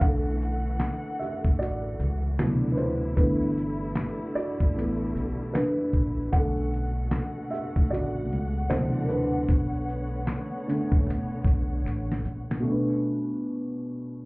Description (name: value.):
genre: lo-fi hip hop.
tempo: 76 BPM.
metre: 4/4.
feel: swing 64% on 16ths.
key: B minor.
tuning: A4 = 439 Hz.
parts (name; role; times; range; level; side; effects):
felt-muted upright piano; accompaniment; 0.0-14.3 s; B2 to F#5; -28 LUFS; equal; cassette tape, low-pass filter.
warm studio string section; sustained chords; 0.0-12.6 s; B2 to F#5; -36 LUFS; left 1 dB; low-pass filter.
upright bass; bass; 0.0-12.6 s; G1 to B2; -29 LUFS; equal; none.
dusty soul sampler-style drum kit; drums; 0.0-12.6 s; handclaps, hi-hat, kick drum, shaker, snare drum; -24 LUFS; equal; none.
finger snap; percussion; 0.8-12.1 s; none; -50 LUFS; left 4 dB; none.
room: moderate booth ambience, RT60 0.2 s.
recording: heard muffled through a wall, club ambience, EQ.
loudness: -24 LUFS.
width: side -25 dB against mid.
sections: 0.0-12.6 A section; 12.6-14.3 B section.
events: felt piano solo 0.0-12.6; drum fill 11.9-12.6.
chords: 0.0 Bm7; 2.4 D13; 3.2 G69; 6.3 Bm7; 8.7 D13; 9.5 Bm9; 12.6 Bm7.